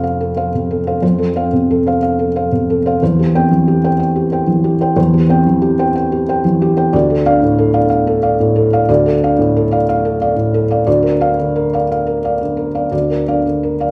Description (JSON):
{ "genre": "neoclassical minimalist piano", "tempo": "61 BPM (dotted quarters)", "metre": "6/8", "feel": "rubato", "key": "F major", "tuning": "A4 = 440 Hz", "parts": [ { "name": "felt-muted upright piano", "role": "solo", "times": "0.0-13.9 s", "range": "D2 to G5", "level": "-14 LUFS", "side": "equal", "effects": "none" } ], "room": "wet large studio reverb, RT60 1.2 s", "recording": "band playing live in one room", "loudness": "-14 LUFS", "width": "mono", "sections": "0.0-13.9 A section", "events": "none", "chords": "0.0 F; 3.0 C/E; 6.9 Dm; 10.9 Bb/D" }